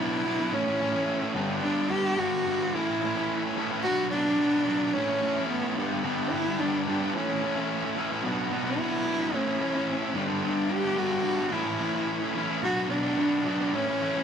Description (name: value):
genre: rock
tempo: 109 BPM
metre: 4/4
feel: straight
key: unclear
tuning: A4 = 440 Hz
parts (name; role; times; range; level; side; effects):
- dark cello; melody; 0.0-14.2 s; B3 to G4; -28 LUFS; equal; slapback echo
- fuzz guitar; riff; 0.0-14.2 s; G2 to F#4; -27 LUFS; equal; distortion
room: moderate studio reverb, RT60 0.6 s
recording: none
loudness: -25 LUFS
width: side -7 dB against mid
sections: 0.0-14.2 A section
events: none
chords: 0.0 Bm; 0.5 A; 1.4 G; 2.7 A; 3.8 Bm; 4.9 A; 5.8 G; 7.1 A; 8.2 Bm; 9.3 A; 10.2 G; 11.5 A; 12.6 Bm; 13.7 A